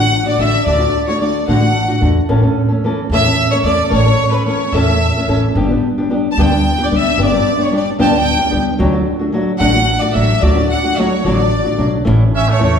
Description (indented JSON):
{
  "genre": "mexican folk, mariachi",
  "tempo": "74 BPM (dotted quarters)",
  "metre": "6/8",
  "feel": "rubato",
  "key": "D major",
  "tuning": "A4 = 443 Hz",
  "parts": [
    { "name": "clear studio violin section", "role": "melody", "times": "0.0-12.8 s", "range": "B4 to A5", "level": "-17 LUFS", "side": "left 1 dB", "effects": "none" },
    { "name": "nylon-string guitar", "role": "accompaniment", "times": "0.0-12.8 s", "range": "G2 to A4", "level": "-15 LUFS", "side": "left 1 dB", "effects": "none" },
    { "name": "upright bass", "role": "bass", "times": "0.0-12.8 s", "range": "G1 to E2", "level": "-17 LUFS", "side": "right 1 dB", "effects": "none" },
    { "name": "clear trumpet", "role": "second line", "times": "12.4-12.8 s", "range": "A3 to C#4", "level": "-19 LUFS", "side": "right 3 dB", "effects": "none" }
  ],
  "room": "wet recital hall reverb, RT60 1.4 s",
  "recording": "heard from further back in the room",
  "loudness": "-12 LUFS",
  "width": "side -7 dB against mid",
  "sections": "0.0-12.1 A section",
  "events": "none",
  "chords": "0.0 D; 2.3 A; 5.6 G; 8.8 D; 12.1 A"
}